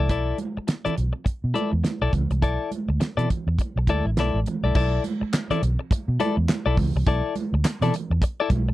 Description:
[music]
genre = funk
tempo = 103 BPM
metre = 4/4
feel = swing 60% on 16ths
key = B minor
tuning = A4 = 439 Hz
[part]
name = clean electric guitar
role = accompaniment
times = 0.0-8.7 s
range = E4 to D5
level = -26 LUFS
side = left 6 dB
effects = none
[part]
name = vintage muted fingered electric bass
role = bass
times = 0.0-8.7 s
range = A1 to B2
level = -23 LUFS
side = equal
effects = none
[part]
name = damped 70s drum kit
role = drums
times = 0.1-8.7 s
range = crash cymbal, handclaps, hi-hat, kick drum, snare drum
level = -24 LUFS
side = right 1 dB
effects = none
[part]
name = congas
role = percussion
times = 0.4-8.7 s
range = none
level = -30 LUFS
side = right 4 dB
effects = none
[sound]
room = little or no reverb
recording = dry, close 1970s-style studio recording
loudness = -21 LUFS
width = side -16 dB against mid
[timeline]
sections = 0.0-4.8 A section; 4.8-8.7 B section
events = none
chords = 0.0 Bm11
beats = | 0.09 0.68 1.26 1.84 | 2.42 3.01 3.59 4.17 | 4.75 5.33 5.91 6.49 | 7.06 7.64 8.22

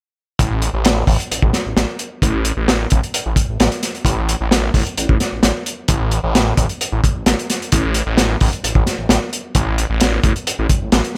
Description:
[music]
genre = breakbeat, breaks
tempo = 131 BPM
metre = 4/4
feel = straight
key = unclear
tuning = A4 = 440 Hz
[part]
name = phased detuned saw bass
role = bass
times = 0.4-11.0 s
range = A1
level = -21 LUFS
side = equal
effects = phaser
[part]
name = crunchy breakbeat drum kit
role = drums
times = 0.4-11.2 s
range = hi-hat, kick drum, snare drum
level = -18 LUFS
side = equal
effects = none
[sound]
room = little or no reverb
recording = none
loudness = -17 LUFS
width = mono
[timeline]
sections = 0.4-11.2 A section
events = none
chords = none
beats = | 0.39 0.85 1.31 1.77 | 2.22 2.68 3.14 3.60 | 4.06 4.51 4.97 5.43 | 5.89 6.35 6.80 7.26 | 7.72 8.18 8.64 9.09 | 9.55 10.01 10.47 10.93

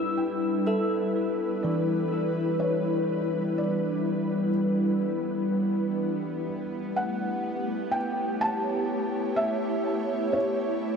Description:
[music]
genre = ambient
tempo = 62 BPM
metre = 4/4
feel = straight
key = unclear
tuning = A4 = 440 Hz
[part]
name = felt-muted upright piano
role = melody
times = 0.0-11.0 s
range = C#5 to A5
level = -32 LUFS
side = right 1 dB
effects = tape echo
[part]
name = ethereal airy pad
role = sustained chords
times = 0.0-11.0 s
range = G3 to C#5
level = -27 LUFS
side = left 1 dB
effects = ensemble chorus, built-in reverb
[part]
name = bell-like tine electric piano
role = arpeggios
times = 0.0-6.5 s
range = E3 to E6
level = -31 LUFS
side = right 1 dB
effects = tape echo
[part]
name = bowed-like drone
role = drone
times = 1.4-11.0 s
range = B3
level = -39 LUFS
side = equal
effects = built-in reverb
[sound]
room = wet huge ambient reverb, RT60 8.5 s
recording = none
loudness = -25 LUFS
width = side -6 dB against mid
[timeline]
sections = 0.0-11.0 A section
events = fade-in on synth drone 0.0-11.0; fade-in on felt piano 0.0-11.0; filter sweep on ambient pad 0.0-11.0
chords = 0.0 Em7; 6.5 A7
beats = 0.67 1.63 | 2.60 3.57 4.54 5.50 | 6.47 7.44 8.41 9.38 | 10.34

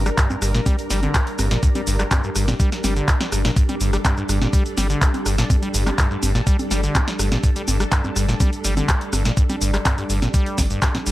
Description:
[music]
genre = acid house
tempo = 124 BPM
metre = 4/4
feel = straight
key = G minor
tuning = A4 = 440 Hz
[part]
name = string machine, full ensemble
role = sustained chords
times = 0.0-11.1 s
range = G3 to Bb4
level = -28 LUFS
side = equal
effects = ensemble chorus, vintage 12-bit sampler grit, sidechain pumping
[part]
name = acid bass, saw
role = riff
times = 0.0-11.1 s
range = G2 to G3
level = -25 LUFS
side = equal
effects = tube saturation, sidechain pumping, tape echo
[part]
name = warm sub bass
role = bass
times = 0.0-11.1 s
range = G1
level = -22 LUFS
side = equal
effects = sidechain pumping
[part]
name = electro analog drum machine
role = drums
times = 0.1-11.1 s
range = cabasa, congas, handclaps, hi-hat, rim click, snare drum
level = -24 LUFS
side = equal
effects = none
[part]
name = electronic kick drum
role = drums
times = 0.2-10.9 s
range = none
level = -18 LUFS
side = equal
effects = none
[sound]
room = light reverb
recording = faint mains hum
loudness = -17 LUFS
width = side -16 dB against mid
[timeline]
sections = 0.0-11.1 A section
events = drum fill 10.8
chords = 0.0 Gm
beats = 0.18 0.66 1.15 | 1.63 2.11 2.60 3.08 | 3.56 4.05 4.53 5.02 | 5.50 5.98 6.47 6.95 | 7.44 7.92 8.40 8.89 | 9.37 9.86 10.34 10.82

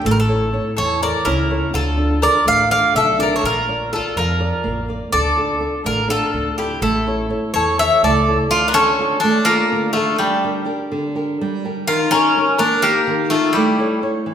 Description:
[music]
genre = greek folk, Greek bouzouki band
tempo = 249 BPM (eighths)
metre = 7/8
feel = straight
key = D harmonic minor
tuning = A4 = 438 Hz
[part]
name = Greek bouzouki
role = melody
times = 0.0-14.0 s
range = G3 to F5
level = -18 LUFS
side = equal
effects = none
[part]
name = flamenco guitar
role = accompaniment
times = 0.0-14.3 s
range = D3 to D5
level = -21 LUFS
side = right 1 dB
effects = none
[part]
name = upright bass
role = bass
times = 0.1-8.4 s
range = A1 to F2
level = -23 LUFS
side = equal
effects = none
[part]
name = bowl-back mandolin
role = second line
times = 0.8-14.0 s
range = D4 to D5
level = -23 LUFS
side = left 3 dB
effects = none
[sound]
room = wet recital hall reverb, RT60 1.5 s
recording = recorded in a church or concert hall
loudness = -15 LUFS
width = side -8 dB against mid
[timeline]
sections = 0.0-8.5 A section; 8.5-14.3 B section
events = none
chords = 0.1 A; 1.7 Dm; 3.4 Bb; 5.1 Dm; 6.8 A; 8.5 Dm; 10.2 Gm; 11.9 Eb; 13.5 A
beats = | 0.06 0.30 0.54 0.78 1.02 1.26 1.51 | 1.75 1.99 2.23 2.47 2.72 2.96 3.20 | 3.44 3.68 3.92 4.17 4.41 4.65 4.89 | 5.13 5.37 5.62 5.86 6.10 6.34 6.58 | 6.82 7.06 7.30 7.54 7.79 8.03 8.27 | 8.51 8.75 8.99 9.23 9.47 9.71 9.95 | 10.19 10.43 10.67 10.91 11.15 11.39 11.63 | 11.87 12.11 12.35 12.59 12.83 13.07 13.31 | 13.55 13.79 14.03 14.27

